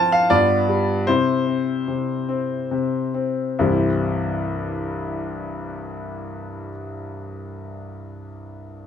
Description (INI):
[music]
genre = classical-period piano sonatina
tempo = 67-83 BPM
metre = 3/4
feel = rubato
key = C major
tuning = A4 = 441 Hz
[part]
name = warm grand piano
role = solo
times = 0.0-8.9 s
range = C2 to A5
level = -21 LUFS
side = left 2 dB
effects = none
[sound]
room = little or no reverb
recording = close, detailed microphones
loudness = -19 LUFS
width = side -8 dB against mid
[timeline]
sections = 0.0-3.6 A section; 3.6-8.9 B section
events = slowing down 0.0-3.6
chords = 0.3 G7; 1.1 C